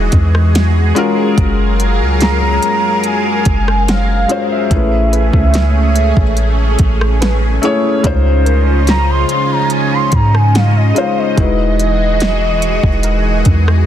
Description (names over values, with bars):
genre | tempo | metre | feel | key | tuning
contemporary R&B | 72 BPM | 4/4 | straight | unclear | A4 = 443 Hz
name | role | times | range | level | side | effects
warm velvety synth lead | melody | 0.0-13.9 s | Eb5 to C6 | -18 LUFS | right 1 dB | chorus, ping-pong delay
felt-muted upright piano | accompaniment | 0.0-13.9 s | G#3 to C#5 | -18 LUFS | left 4 dB | none
lush unison pad | sustained chords | 0.0-13.9 s | Db3 to F5 | -19 LUFS | right 2 dB | chorus, phaser, sidechain pumping
clean 808-style bass | bass | 0.0-13.9 s | E1 to Ab2 | -13 LUFS | equal | none
smooth R&B drum kit | drums | 0.1-13.9 s | hi-hat, kick drum, rim click, snare drum | -17 LUFS | equal | none
soft round pluck | texture | 3.9-13.9 s | Bb4 to C5 | -30 LUFS | right 1 dB | none
room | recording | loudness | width
light reverb, digital ambience | dense, heavily limited modern master | -10 LUFS | side -10 dB against mid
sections
0.0-13.9 A section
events
none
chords
0.0 Emaj9; 1.0 Gbmaj9; 4.7 Amaj9; 8.0 Dbmaj9; 11.4 Emaj9